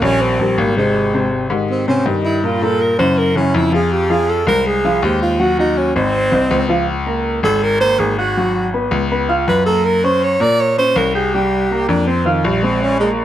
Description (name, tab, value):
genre	Afro-Cuban jazz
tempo	162 BPM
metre	4/4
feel	straight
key	unclear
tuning	A4 = 436 Hz
part	breathy tenor saxophone	melody	0.0-13.1 s	Eb3 to D5	-17 LUFS	right 2 dB	plate reverb
part	warm upright piano	accompaniment	0.0-13.2 s	Bb2 to G6	-19 LUFS	equal	none
part	bright grand piano	bass	0.0-13.2 s	Ab1 to Bb2	-18 LUFS	left 2 dB	none
room	moderate studio reverb, RT60 0.8 s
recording	dark, warm production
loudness	-13 LUFS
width	side -12 dB against mid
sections	0.0-6.9 A section; 6.9-13.2 A section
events	tenor saxophone solo 0.0-13.2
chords	0.0 Eb7 (rootless); 0.9 Abmaj7; 2.4 Gm; 3.2 Gb5; 3.9 Fm7; 5.4 Ebm; 6.1 Ab; 6.9 Db5; 8.4 Abm7; 9.1 Db6; 9.8 Gb; 11.3 C5; 12.1 F5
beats	0.21 0.58 | 0.95 1.32 1.69 2.06 | 2.43 2.80 3.17 3.54 | 3.92 4.29 4.66 5.03 | 5.40 5.77 6.14 6.51 | 6.88 7.25 7.62 7.99 | 8.36 8.73 9.11 9.48 | 9.85 10.22 10.59 10.96 | 11.33 11.70 12.07 12.45 | 12.82 13.19